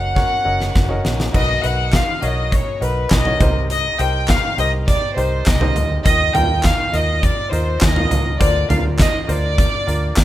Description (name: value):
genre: piano-driven pop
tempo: 102 BPM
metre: 4/4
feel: straight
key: unclear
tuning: A4 = 439 Hz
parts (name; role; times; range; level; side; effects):
- rich chamber violin section; melody; 0.0-10.2 s; B4 to G5; -20 LUFS; left 1 dB; none
- bright grand piano; accompaniment; 0.0-10.2 s; B2 to F5; -26 LUFS; equal; none
- vintage muted fingered electric bass; bass; 0.0-10.2 s; Gb1 to Eb2; -21 LUFS; equal; none
- huge arena drum kit; drums; 0.2-10.2 s; crash cymbal, handclaps, hi-hat, kick drum, snare drum, toms; -19 LUFS; equal; none
room: small room ambience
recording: rough home demo mix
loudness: -15 LUFS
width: side -14 dB against mid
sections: 0.0-1.3 A section; 1.3-10.2 B section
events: drum fill 0.2-1.3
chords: 0.0 Gb; 1.3 Bmaj7; 3.4 Cm7; 6.1 Ebsus2; 8.4 Bbadd9/D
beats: 0.16 0.75 | 1.34 1.93 2.52 3.11 | 3.70 4.29 4.87 5.46 | 6.05 6.64 7.23 7.82 | 8.41 9.00 9.58 10.17